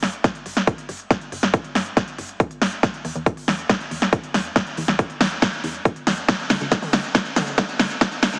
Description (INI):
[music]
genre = uplifting trance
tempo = 139 BPM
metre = 4/4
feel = straight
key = unclear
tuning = A4 = 440 Hz
[part]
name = plucky analog bass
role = bass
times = 0.0-8.4 s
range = G1 to E2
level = -33 LUFS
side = equal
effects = sidechain pumping
[part]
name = big-room dance drum kit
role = drums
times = 0.0-8.4 s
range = hi-hat, shaker, snare drum, toms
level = -24 LUFS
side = equal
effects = overdrive
[part]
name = electronic kick drum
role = drums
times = 0.2-8.1 s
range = none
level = -23 LUFS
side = equal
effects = overdrive
[sound]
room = moderate lush hall reverb, RT60 1.8 s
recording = heavily compressed radio sound, high-pass filter, small speaker sound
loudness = -22 LUFS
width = mono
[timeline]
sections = 0.0-8.4 A section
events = build-up 0.0-8.4; drum fill 0.0-8.4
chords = none